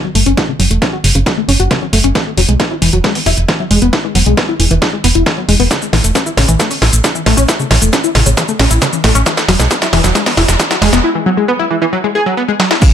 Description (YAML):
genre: uplifting trance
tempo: 135 BPM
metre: 4/4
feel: straight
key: E major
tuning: A4 = 441 Hz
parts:
  - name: tight sequenced synth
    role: arpeggios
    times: 0.0-12.9 s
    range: C#3 to G#4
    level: -15 LUFS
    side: left 2 dB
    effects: chorus, sidechain pumping, ping-pong delay
  - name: solid FM bass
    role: bass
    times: 0.1-11.0 s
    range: E1 to B1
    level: -12 LUFS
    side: right 1 dB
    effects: sidechain pumping
  - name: techno drum kit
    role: drums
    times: 0.2-12.9 s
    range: crash cymbal, hi-hat, shaker, snare drum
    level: -14 LUFS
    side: right 1 dB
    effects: high-pass filter on snare, high-pass filter on hats, high-pass filter on perc, high-pass filter on cymbals, high-pass filter on room
  - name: electronic kick drum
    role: drums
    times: 0.4-12.9 s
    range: none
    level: -17 LUFS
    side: right 1 dB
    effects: high-pass filter on kick, high-pass filter on room
room: light reverb, digital ambience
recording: none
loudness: -10 LUFS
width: side -9 dB against mid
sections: 0.0-12.8 A section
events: build-up 0.0-12.8; drum fill 0.0-11.0, 12.6; filter sweep on synth arpeggio sound 0.0-12.8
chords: 0.0 F#5; 2.2 N.C.; 5.7 A; 9.3 Eadd9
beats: | 0.38 0.82 1.26 1.71 | 2.15 2.60 3.04 3.49 | 3.93 4.38 4.82 5.26 | 5.71 6.15 6.60 7.04 | 7.49 7.93 8.38 8.82 | 9.26 9.71 10.15 10.60 | 11.04 11.49 11.93 12.38 | 12.82